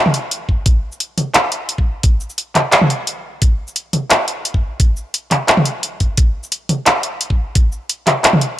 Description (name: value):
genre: drum and bass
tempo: 174 BPM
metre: 4/4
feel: half-time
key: none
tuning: none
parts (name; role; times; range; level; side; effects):
- drum and bass drum kit; drums; 0.1-8.5 s; handclaps, hi-hat, shaker, toms; -14 LUFS; equal; none
- electronic kick drum; drums; 0.5-7.6 s; none; -14 LUFS; equal; none
room: light reverb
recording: dry, gritty hardware recording, cassette tape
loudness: -14 LUFS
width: side -13 dB against mid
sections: 0.0-8.6 A section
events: none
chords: none